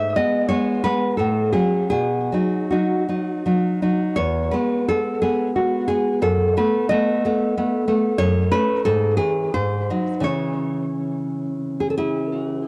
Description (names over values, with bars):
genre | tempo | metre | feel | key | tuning
romantic piece for solo classical guitar | 62-96 BPM | 3/4 | rubato | C# minor from 8.2 s | A4 = 435 Hz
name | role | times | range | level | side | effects
nylon-string guitar | solo | 0.0-12.7 s | E2 to E5 | -21 LUFS | equal | tape echo
room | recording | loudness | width
moderate spring reverb, RT60 1.8 s, small room ambience | worn, warbling old tape, cassette tape, warbly pitch drift | -21 LUFS | mono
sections
0.0-12.7 A section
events
none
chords
0.0 G#madd11; 1.2 F#m/A; 1.9 B; 4.2 E; 6.2 B7/F#; 8.2 F#m; 8.8 C#m/G#; 9.5 G#7; 10.3 C#m